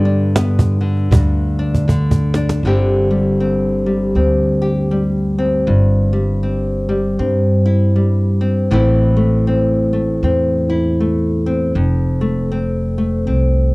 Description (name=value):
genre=acoustic folk duo or small band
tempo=79 BPM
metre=4/4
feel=swing 60% on 8ths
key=G mixolydian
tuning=A4 = 438 Hz
part: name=nylon-string guitar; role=accompaniment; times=0.0-13.7 s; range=F2 to G4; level=-16 LUFS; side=left 1 dB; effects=none
part: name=upright bass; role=bass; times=0.0-13.7 s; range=F1 to G2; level=-16 LUFS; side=equal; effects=none
part: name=cajon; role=percussion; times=0.4-2.6 s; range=none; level=-16 LUFS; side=right 1 dB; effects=none
room=light reverb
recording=home recording on cassette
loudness=-13 LUFS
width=side -24 dB against mid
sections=0.0-2.6 A section; 2.6-13.7 A section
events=drum fill 1.7-2.6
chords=0.0 G; 2.6 Gsus4; 5.7 C/G; 8.7 Am; 11.8 F